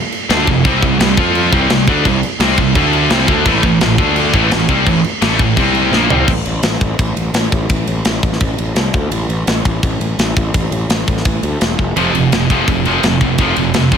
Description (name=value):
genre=heavy metal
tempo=169 BPM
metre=4/4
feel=straight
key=unclear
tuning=A4 = 442 Hz
part: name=tight metal drum kit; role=drums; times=0.1-14.0 s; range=crash cymbal, kick drum, ride cymbal, snare drum, toms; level=-16 LUFS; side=equal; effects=none
part: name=scooped high-gain guitar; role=riff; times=0.3-6.3, 12.0-14.0 s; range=F2 to F4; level=-16 LUFS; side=left 13 dB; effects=distortion
part: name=scooped high-gain guitar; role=riff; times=0.3-6.3, 12.0-14.0 s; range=F2 to F4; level=-16 LUFS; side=right 10 dB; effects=distortion
part: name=fuzz picked electric bass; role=bass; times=0.3-14.0 s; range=E1 to F2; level=-18 LUFS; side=equal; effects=overdrive
room=little or no reverb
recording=none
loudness=-12 LUFS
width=side -7 dB against mid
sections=0.0-6.3 A section; 6.3-14.0 B section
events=drum fill 5.9-6.3, 11.8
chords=0.0 F5; 0.7 C5; 1.2 F5; 1.5 C5; 2.8 D5; 3.1 C5; 3.5 A5; 4.0 D5; 4.3 Am; 5.6 C5; 5.9 Fsus24/Bb; 6.3 N.C.; 12.0 F5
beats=0.30 | 0.65 1.00 1.35 1.70 | 2.05 2.40 2.75 3.11 | 3.46 3.81 4.16 4.51 | 4.87 5.22 5.58 5.93 | 6.28 6.64 6.99 7.35 | 7.71 8.06 8.42 8.77 | 9.13 9.48 9.84 10.20 | 10.55 10.91 11.26 11.62 | 11.97 12.32 12.68 13.04 | 13.39 13.74